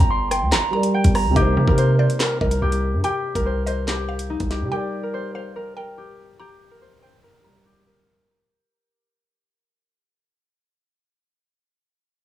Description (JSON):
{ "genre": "hip hop, drill", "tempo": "143 BPM", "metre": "4/4", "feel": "half-time", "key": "C minor", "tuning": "A4 = 441 Hz", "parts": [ { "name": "concert harp", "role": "melody", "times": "0.0-10.0 s", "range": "Eb4 to C6", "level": "-25 LUFS", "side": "left 1 dB", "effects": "none" }, { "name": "mallet-like synth pluck", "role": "second line", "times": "0.0-7.6 s", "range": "D5 to Bb5", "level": "-31 LUFS", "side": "right 1 dB", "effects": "chorus, phaser, tape echo" }, { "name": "dark concert grand piano", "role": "accompaniment", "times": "0.0-8.1 s", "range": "C3 to D5", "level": "-26 LUFS", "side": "right 1 dB", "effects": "none" }, { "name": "hard-hitting 808-style bass", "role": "bass", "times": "0.0-4.7 s", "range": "G1 to C3", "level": "-21 LUFS", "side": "equal", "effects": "none" }, { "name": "drill drum kit", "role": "drums", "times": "0.0-4.6 s", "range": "handclaps, hi-hat, kick drum, rim click, snare drum", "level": "-21 LUFS", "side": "equal", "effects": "none" } ], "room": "digital ambience", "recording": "dry, gritty hardware recording, small room ambience", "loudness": "-18 LUFS", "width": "side -13 dB against mid", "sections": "0.0-1.4 A section; 1.4-8.1 B section", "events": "fade-out 1.4-8.1", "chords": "0.0 Gm; 1.4 Cm7; 4.7 Gm" }